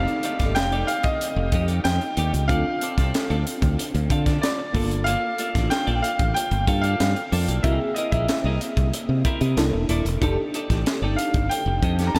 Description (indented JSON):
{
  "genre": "polished 1980s jazz-funk pop",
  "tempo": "93 BPM",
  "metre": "4/4",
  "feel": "straight",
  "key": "G minor",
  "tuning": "A4 = 442 Hz",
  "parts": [
    { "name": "clear baby grand piano", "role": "melody", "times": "0.0-12.2 s", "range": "D5 to Bb5", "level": "-30 LUFS", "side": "equal", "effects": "none" },
    { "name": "bell-like FM electric piano", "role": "accompaniment", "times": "0.0-12.2 s", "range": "Bb3 to A4", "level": "-32 LUFS", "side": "equal", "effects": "tremolo, analog chorus" },
    { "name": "clean electric guitar", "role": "riff", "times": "0.0-12.2 s", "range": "A3 to F5", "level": "-34 LUFS", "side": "equal", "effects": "lush chorus" },
    { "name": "modern bright fingered electric bass", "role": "bass", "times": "0.0-12.2 s", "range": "Eb1 to D3", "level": "-26 LUFS", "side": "equal", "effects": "none" },
    { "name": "crisp fusion drum kit", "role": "drums", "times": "0.1-12.2 s", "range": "hi-hat, kick drum, snare drum", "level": "-28 LUFS", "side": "equal", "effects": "none" }
  ],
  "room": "moderate huge ambient reverb, RT60 7.5 s",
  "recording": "dreamy mix soaked in reverb",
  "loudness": "-23 LUFS",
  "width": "mono",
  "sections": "0.0-12.2 A section",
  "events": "none",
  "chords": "0.0 F13; 2.5 Dm7; 4.7 Gm9; 7.6 C7alt; 9.6 C13; 10.2 F13"
}